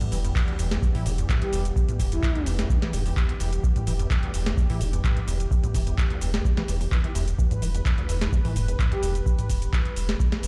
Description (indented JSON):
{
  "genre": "acid house",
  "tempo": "128 BPM",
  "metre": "4/4",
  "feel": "swing 53% on 16ths",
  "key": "E minor pentatonic",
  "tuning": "A4 = 440 Hz",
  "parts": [
    { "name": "warm analog pad", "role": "sustained chords", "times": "0.0-10.5 s", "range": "E3 to B4", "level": "-39 LUFS", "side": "equal", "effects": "chorus, tremolo, sidechain pumping" },
    { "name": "deep acid bass", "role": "riff", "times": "0.0-9.1 s", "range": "D2 to E3", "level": "-34 LUFS", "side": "equal", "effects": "subtle chorus, sidechain pumping, digital delay" },
    { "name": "booming analog drum machine", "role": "drums", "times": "0.0-10.5 s", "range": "cabasa, handclaps, hi-hat, snare drum, toms", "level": "-33 LUFS", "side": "equal", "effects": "none" },
    { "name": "saturated sub bass", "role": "bass", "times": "0.1-10.5 s", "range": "E1", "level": "-30 LUFS", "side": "equal", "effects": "sidechain pumping" },
    { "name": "electronic kick drum", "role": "drums", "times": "0.4-10.3 s", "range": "none", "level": "-26 LUFS", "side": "equal", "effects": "none" },
    { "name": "breathy flute-like synth lead", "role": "melody", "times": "1.4-2.5, 8.9-9.1 s", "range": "E4 to G4", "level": "-35 LUFS", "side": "equal", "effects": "subtle chorus, digital delay" }
  ],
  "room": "little or no reverb",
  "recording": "played on a big sound system in a bare room, large studio reverb",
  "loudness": "-25 LUFS",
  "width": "mono",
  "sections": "0.0-10.5 A section",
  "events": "none",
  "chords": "0.0 Em"
}